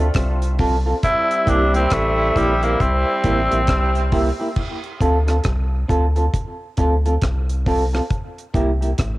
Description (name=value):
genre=dub reggae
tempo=68 BPM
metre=4/4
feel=swing 62% on 16ths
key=D minor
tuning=A4 = 439 Hz
part: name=warm horn section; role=second line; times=0.0-4.1 s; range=G3 to F4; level=-24 LUFS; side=equal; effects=cassette tape, tape echo
part: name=clean electric guitar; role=accompaniment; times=0.0-8.9 s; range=Bb3 to A4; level=-23 LUFS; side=right 1 dB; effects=cassette tape, tape echo
part: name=rubbery square bass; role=bass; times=0.0-9.2 s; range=A1 to D2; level=-20 LUFS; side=equal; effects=tube saturation
part: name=deep reggae drum kit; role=drums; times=0.1-9.2 s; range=crash cymbal, hi-hat, kick drum, rim click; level=-23 LUFS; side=equal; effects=cassette tape
part: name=raspy tenor saxophone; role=melody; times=1.0-4.1 s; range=G3 to E4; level=-20 LUFS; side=equal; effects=cassette tape, tape echo
room=light reverb, small room ambience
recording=home recording on cassette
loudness=-16 LUFS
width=side -18 dB against mid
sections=0.0-4.6 A section; 4.6-9.2 B section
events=none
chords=0.0 Dm7; 1.0 C7; 4.6 Dm7; 8.1 C7